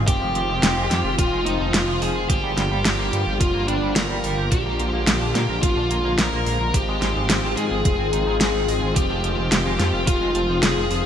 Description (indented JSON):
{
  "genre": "synthwave",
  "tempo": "108 BPM",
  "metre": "4/4",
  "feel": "straight",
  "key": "F dorian",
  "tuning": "A4 = 440 Hz",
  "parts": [
    { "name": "brassy analog pad", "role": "sustained chords", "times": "0.0-11.1 s", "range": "D3 to F4", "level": "-28 LUFS", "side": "left 1 dB", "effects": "chorus, sidechain pumping" },
    { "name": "dark detuned saw bass", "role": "bass", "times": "0.0-11.0 s", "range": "Eb1 to Bb2", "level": "-25 LUFS", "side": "equal", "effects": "tube saturation" },
    { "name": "biting lead guitar", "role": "melody", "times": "0.1-11.1 s", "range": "D4 to Bb4", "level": "-24 LUFS", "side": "left 1 dB", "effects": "overdrive, vintage 12-bit sampler grit, ping-pong delay" },
    { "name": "electronic kick drum", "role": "drums", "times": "0.1-10.2 s", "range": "none", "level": "-21 LUFS", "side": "equal", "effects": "overdrive, small room ambience" },
    { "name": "pop drum kit", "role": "drums", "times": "0.1-11.0 s", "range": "hi-hat, snare drum", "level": "-24 LUFS", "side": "equal", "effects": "small room ambience" },
    { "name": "electric guitar at the edge of break-up", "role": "riff", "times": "0.2-11.0 s", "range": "F3 to Bb4", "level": "-32 LUFS", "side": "right 2 dB", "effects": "wide subtle chorus, ping-pong delay" }
  ],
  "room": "moderate lush hall reverb, RT60 2.5 s",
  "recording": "bright 1980s-style digital production",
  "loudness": "-18 LUFS",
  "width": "side -9 dB against mid",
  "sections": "0.0-11.1 A section",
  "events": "none",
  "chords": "0.1 Fm7; 2.3 Gm7; 4.5 Bb7; 6.7 Ab6; 9.0 Fm7",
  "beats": "| 0.07 0.63 1.19 1.74 | 2.30 2.85 3.41 3.96 | 4.52 5.07 5.63 6.18 | 6.74 7.30 7.85 8.41 | 8.96 9.52 10.07 10.63"
}